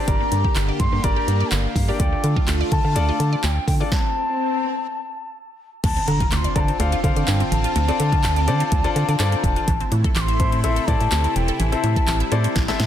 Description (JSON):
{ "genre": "dance-pop", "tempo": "125 BPM", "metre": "4/4", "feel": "straight", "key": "D minor", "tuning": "A4 = 440 Hz", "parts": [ { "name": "bansuri", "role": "melody", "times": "0.0-12.6 s", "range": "F5 to D6", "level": "-26 LUFS", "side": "left 2 dB", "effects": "tape echo" }, { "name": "clear baby grand piano", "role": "accompaniment", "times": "0.0-12.9 s", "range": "C4 to F5", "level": "-27 LUFS", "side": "left 6 dB", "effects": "sidechain pumping" }, { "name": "supersaw pad", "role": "sustained chords", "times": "0.0-12.9 s", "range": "C3 to G4", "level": "-29 LUFS", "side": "right 1 dB", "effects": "phaser, sidechain pumping" }, { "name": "resonant blip pluck", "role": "arpeggios", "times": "0.0-12.9 s", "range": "D3 to E5", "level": "-32 LUFS", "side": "right 3 dB", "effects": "phaser, sidechain pumping, tape echo" }, { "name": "organ-like FM bass", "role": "bass", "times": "0.1-12.9 s", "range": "E1 to D3", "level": "-21 LUFS", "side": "equal", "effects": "sidechain pumping" }, { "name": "deep house drum kit", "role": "drums", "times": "0.1-12.9 s", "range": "crash cymbal, handclaps, hi-hat, kick drum, snare drum", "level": "-22 LUFS", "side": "equal", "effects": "none" }, { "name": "swell and impact", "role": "sound effects", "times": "3.4-7.8 s", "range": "none", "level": "-29 LUFS", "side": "left 1 dB", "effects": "none" } ], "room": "light reverb", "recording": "dense, heavily limited modern master", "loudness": "-18 LUFS", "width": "side -10 dB against mid", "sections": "0.0-5.8 A section; 5.8-12.9 B section", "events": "swell 3.4-5.8; stop 3.9-5.8; impact 5.8-7.8; drum fill 12.6-12.9", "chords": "0.1 Gm; 2.0 Dm; 3.9 N.C.; 5.8 Dm7; 9.7 Am" }